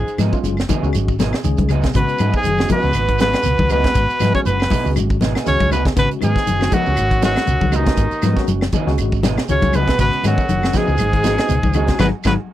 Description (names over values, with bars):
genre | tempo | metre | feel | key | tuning
afrobeat | 119 BPM | 4/4 | swing 55% on 16ths | G# dorian | A4 = 440 Hz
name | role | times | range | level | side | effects
clear trumpet | melody | 0.0-12.3 s | D#4 to C#5 | -20 LUFS | equal | none
clear baritone saxophone | second line | 0.0-12.3 s | D#2 to C#3 | -29 LUFS | left 9 dB | none
warm tenor saxophone | second line | 0.0-12.3 s | D#3 to C#4 | -28 LUFS | right 7 dB | none
mellow tine electric piano | accompaniment | 0.0-12.3 s | G#3 to G#4 | -26 LUFS | left 1 dB | overdrive, fast stereo tremolo
hollow-body short-scale fingered electric bass | bass | 0.0-12.4 s | F#1 to G#2 | -20 LUFS | equal | none
tight funk drum kit | drums | 0.1-12.4 s | hi-hat, kick drum, snare drum | -21 LUFS | equal | none
shekere | percussion | 0.1-12.4 s | none | -30 LUFS | right 6 dB | none
semi-hollow electric guitar | arpeggios | 0.2-12.3 s | B2 to G#3 | -24 LUFS | left 6 dB | none
electric guitar at the edge of break-up | stabs | 0.2-12.3 s | F#3 to G#4 | -27 LUFS | right 8 dB | spring reverb
claves | percussion | 0.2-12.4 s | none | -32 LUFS | left 8 dB | none
congas | percussion | 0.2-12.4 s | none | -24 LUFS | left 3 dB | none
room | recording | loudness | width
little or no reverb | dry, close 1970s-style studio recording | -14 LUFS | side -13 dB against mid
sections
0.0-12.5 A section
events
band accent 12.0-12.5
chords
0.0 G#m7